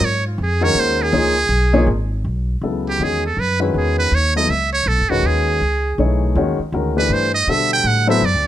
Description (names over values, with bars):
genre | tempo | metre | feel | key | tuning
modal jazz | 161 BPM | 3/4 | swing 63% on 8ths | F# dorian | A4 = 440 Hz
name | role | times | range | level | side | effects
trumpet with metal mute | melody | 0.0-8.5 s | E4 to G5 | -18 LUFS | right 3 dB | none
upright bass | bass | 0.0-8.5 s | E1 to B2 | -20 LUFS | equal | none
dark upright piano | accompaniment | 0.6-8.2 s | C#3 to D#5 | -20 LUFS | left 3 dB | none
room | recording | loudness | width
light reverb | close, detailed microphones | -15 LUFS | side -12 dB against mid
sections
0.0-2.3 A section; 2.3-8.5 A section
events
muted trumpet solo 0.0-8.5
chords
0.0 Eb9sus4; 1.1 Db13; 2.3 F#13sus4; 6.7 D13sus4